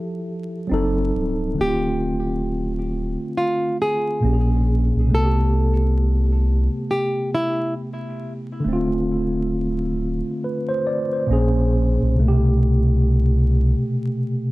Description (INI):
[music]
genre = lo-fi hip hop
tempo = 68 BPM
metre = 4/4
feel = swing 64% on 16ths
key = D dorian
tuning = A4 = 441 Hz
[part]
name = mellow tine electric piano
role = accompaniment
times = 0.0-14.5 s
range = Bb2 to D5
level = -22 LUFS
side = equal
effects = medium stereo tremolo, cassette tape, low-pass filter
[part]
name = soft dub sub bass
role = bass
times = 0.7-13.7 s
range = C#1 to C2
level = -20 LUFS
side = equal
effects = none
[part]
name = nylon-string guitar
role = melody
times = 1.6-7.7 s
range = E4 to A4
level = -24 LUFS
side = equal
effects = low-pass filter, analog delay
[sound]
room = moderate studio reverb, RT60 0.6 s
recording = vinyl crackle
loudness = -18 LUFS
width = side -19 dB against mid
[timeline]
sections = 0.0-1.6 A section; 1.6-14.5 B section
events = none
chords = 0.0 Fmaj9; 0.7 F#dim7; 1.6 Dm7; 4.2 Bbm7; 5.1 Am7/C; 8.6 Dm7; 11.3 Bbm7; 12.2 Am7/C